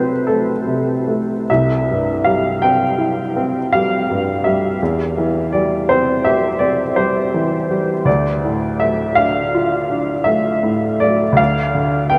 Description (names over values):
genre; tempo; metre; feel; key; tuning
classical, romantic nocturne for solo piano; 55 BPM (dotted quarters); 9/8; rubato; unclear; A4 = 435 Hz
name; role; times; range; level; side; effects
clear upright piano; solo; 0.0-12.2 s; C2 to G5; -17 LUFS; equal; none
room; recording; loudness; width
wet huge ambient reverb, RT60 8.3 s; in a vast, echoing space; -17 LUFS; mono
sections
0.0-12.2 A section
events
none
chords
0.0 Am/C; 1.5 C; 4.8 C/E; 8.1 Dm; 11.4 Bdim/D (rootless)